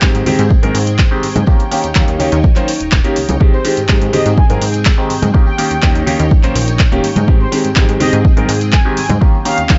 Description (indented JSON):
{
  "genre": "filtered disco house",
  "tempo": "124 BPM",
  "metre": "4/4",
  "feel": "straight",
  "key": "Ab major",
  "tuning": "A4 = 441 Hz",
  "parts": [
    { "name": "bright grand piano", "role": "accompaniment", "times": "0.0-9.8 s", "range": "Eb3 to C5", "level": "-19 LUFS", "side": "equal", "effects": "phaser, sidechain pumping, low-pass filter" },
    { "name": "string machine, full ensemble", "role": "sustained chords", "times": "0.0-9.8 s", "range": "C4 to G5", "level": "-27 LUFS", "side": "equal", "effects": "ensemble chorus, vintage 12-bit sampler grit, sidechain pumping, low-pass filter" },
    { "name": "plucky analog bass", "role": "bass", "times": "0.0-9.8 s", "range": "Eb1 to Ab2", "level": "-19 LUFS", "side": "equal", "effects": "sidechain pumping, low-pass filter" },
    { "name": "electronic kick drum", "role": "drums", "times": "0.0-9.8 s", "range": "none", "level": "-13 LUFS", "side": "equal", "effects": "none" },
    { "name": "punchy analog drum machine", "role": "drums", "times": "0.0-9.8 s", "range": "handclaps, hi-hat", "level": "-22 LUFS", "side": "equal", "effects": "sidechain pumping on hats" },
    { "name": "tambourine and congas", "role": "percussion", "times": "0.0-9.8 s", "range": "none", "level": "-26 LUFS", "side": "equal", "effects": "sidechain pumping on perc, low-pass filter on perc" },
    { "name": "analog synth brass", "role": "melody", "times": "3.5-9.8 s", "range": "C5 to Ab5", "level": "-24 LUFS", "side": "equal", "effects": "chorus, sidechain pumping, low-pass filter" }
  ],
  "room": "digital ambience",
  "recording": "nothing above 7.8 kHz",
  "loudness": "-13 LUFS",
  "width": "mono",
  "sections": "0.0-9.8 A section",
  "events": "none",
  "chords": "0.0 Abmaj7; 1.5 Eb7; 3.4 Abmaj7; 5.3 Eb7; 7.3 Abmaj7; 9.2 Eb7"
}